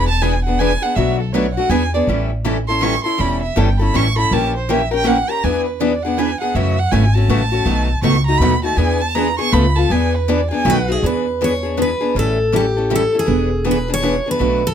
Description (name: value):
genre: acoustic string swing (jazz manouche)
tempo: 161 BPM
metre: 3/4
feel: swing 63% on 8ths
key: E mixolydian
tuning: A4 = 441 Hz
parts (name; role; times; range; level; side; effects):
- warm violin; second line; 0.0-10.9 s; A4 to C#6; -21 LUFS; right 4 dB; none
- picked acoustic archtop guitar; accompaniment; 0.0-14.6 s; B2 to A#4; -20 LUFS; left 6 dB; none
- picked steel-string acoustic guitar; accompaniment; 0.0-14.6 s; B2 to C#5; -22 LUFS; right 6 dB; none
- upright bass; bass; 0.0-14.7 s; E1 to F#2; -19 LUFS; equal; none
- picked steel-string acoustic guitar; melody; 10.7-14.7 s; G4 to C#5; -19 LUFS; equal; none
room: light reverb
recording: close, detailed microphones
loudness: -14 LUFS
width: side -8 dB against mid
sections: 0.0-11.0 A section; 11.0-14.7 B section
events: violin solo 0.0-11.0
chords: 0.0 E7; 1.0 Bm7; 1.7 E7; 2.1 A7; 4.3 A#dim7; 5.4 E7; 6.6 F#m7; 7.7 B7; 8.8 E7; 9.5 C#aug7; 9.9 E7; 10.7 B7; 11.0 E7; 12.2 A7; 13.3 E7